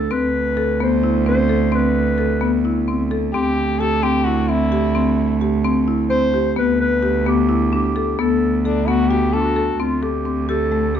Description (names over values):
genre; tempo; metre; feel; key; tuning
contemporary instrumental, chamber music in an uneven meter; 260 BPM (eighths); 7/8; straight; D mixolydian; A4 = 439 Hz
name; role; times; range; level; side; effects
warm clarinet; melody; 0.0-2.7, 6.1-11.0 s; F4 to C5; -22 LUFS; equal; none
marimba with medium mallets; arpeggios; 0.0-11.0 s; A3 to A4; -20 LUFS; left 5 dB; none
rich cello; bass; 0.0-11.0 s; D2; -20 LUFS; right 5 dB; none
stopped French horn; second line; 3.3-5.4, 8.7-9.8 s; D4 to A4; -22 LUFS; left 2 dB; none
room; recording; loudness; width
moderate recital hall reverb, RT60 1.4 s; dark, warm production, nothing above 7.5 kHz; -16 LUFS; side -9 dB against mid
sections
0.0-9.8 A section; 9.8-11.0 B section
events
none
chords
0.1 Amadd9/D; 3.3 C/D; 6.6 Em7/D (rootless); 8.2 D6; 9.8 D7sus4